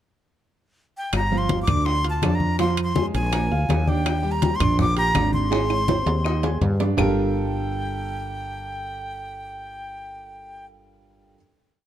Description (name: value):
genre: latin, salsa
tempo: 164 BPM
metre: 4/4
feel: straight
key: G minor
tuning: A4 = 441 Hz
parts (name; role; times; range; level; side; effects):
- breathy bright jazz flute; melody; 1.0-10.7 s; G5 to D6; -27 LUFS; equal; none
- woody fretless electric bass; bass; 1.1-11.4 s; G1 to G2; -24 LUFS; equal; none
- bongos; percussion; 1.1-7.1 s; none; -31 LUFS; left 7 dB; none
- claves; percussion; 1.1-7.1 s; none; -30 LUFS; left 6 dB; none
- congas; percussion; 1.1-7.1 s; none; -26 LUFS; left 1 dB; none
- timbales; percussion; 1.1-7.1 s; none; -30 LUFS; right 6 dB; none
- clear concert grand piano; accompaniment; 1.3-11.4 s; F3 to Ab6; -27 LUFS; right 4 dB; none
room: light reverb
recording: dark, warm production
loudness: -20 LUFS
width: side -11 dB against mid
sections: 0.0-1.1 pickup bar; 1.1-7.0 verse; 7.0-9.9 final chord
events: drum fill 5.5-7.0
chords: 0.0 N.C.; 1.1 G5; 2.6 Fm; 3.3 Bb7; 4.1 Ebmaj7; 5.5 Ab; 7.0 Gm9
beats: 0.03 0.40 0.76 | 1.13 1.50 1.86 2.23 | 2.59 2.96 3.33 3.69 | 4.06 4.42 4.79 5.16 | 5.52 5.89 6.25 6.62 | 6.98 7.35 7.71 8.08 | 8.44 8.80 9.17 9.53